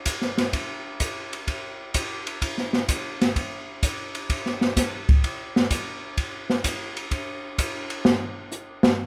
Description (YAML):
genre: jazz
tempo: 128 BPM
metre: 4/4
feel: swing 69% on 8ths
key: none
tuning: none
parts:
  - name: open jazz drum kit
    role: drums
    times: 0.1-9.0 s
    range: hi-hat, kick drum, ride cymbal, snare drum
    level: -26 LUFS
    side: equal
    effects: none
room: little or no reverb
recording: close, detailed microphones, faint mains hum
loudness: -26 LUFS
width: mono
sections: 0.0-8.1 A section; 8.1-9.1 B section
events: drum solo 8.1-9.1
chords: none